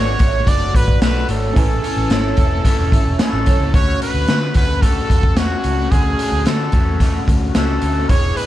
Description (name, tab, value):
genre	indie pop, bedroom pop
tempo	110 BPM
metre	4/4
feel	straight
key	unclear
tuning	A4 = 440 Hz
part	bright trumpet	melody	0.0-8.5 s	F#4 to D5	-22 LUFS	right 2 dB	analog chorus
part	vibraphone with soft mallets	second line	0.0-3.6 s	E4 to E5	-28 LUFS	right 6 dB	wide subtle chorus, tape echo
part	dark upright piano	accompaniment	0.0-3.8 s	C#4 to G#5	-31 LUFS	right 5 dB	none
part	electric guitar through a small old amp	accompaniment	0.0-8.5 s	A2 to G#4	-24 LUFS	left 4 dB	lush chorus, warbly pitch drift
part	vintage muted picked electric bass	bass	0.0-8.3 s	E1 to D3	-20 LUFS	equal	none
part	raw garage drum kit	drums	0.2-8.5 s	hi-hat, kick drum, snare drum	-16 LUFS	equal	none
room	light reverb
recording	dark, warm production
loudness	-14 LUFS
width	side -14 dB against mid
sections	0.0-3.7 A section; 3.7-8.5 B section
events	none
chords	0.0 Bm7; 1.6 Amaj7; 3.7 Dmaj7